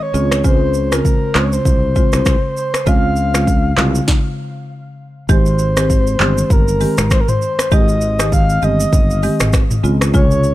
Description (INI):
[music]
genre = afrobeats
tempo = 99 BPM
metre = 4/4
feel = swing 58% on 16ths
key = Ab major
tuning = A4 = 441 Hz
[part]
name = breathy flute-like synth lead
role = melody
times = 0.0-10.5 s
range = Bb4 to F5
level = -20 LUFS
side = left 1 dB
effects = chorus, tremolo, tape echo
[part]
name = marimba with medium mallets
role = accompaniment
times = 0.1-10.5 s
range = C3 to G4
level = -19 LUFS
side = equal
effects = none
[part]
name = modern bright fingered electric bass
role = bass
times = 0.1-10.5 s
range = G1 to Db2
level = -17 LUFS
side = equal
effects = none
[part]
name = afro-pop drum kit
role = drums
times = 0.1-10.5 s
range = finger snaps, handclaps, hi-hat, kick drum, rim click, shaker, snare drum, toms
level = -15 LUFS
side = equal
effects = none
[sound]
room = little or no reverb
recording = dry, gritty hardware recording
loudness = -12 LUFS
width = side -15 dB against mid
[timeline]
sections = 0.0-5.3 A section; 5.3-10.5 B section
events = stop 4.1-5.3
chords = 0.1 Dbmaj7; 5.3 Abmaj7; 9.8 Dbmaj7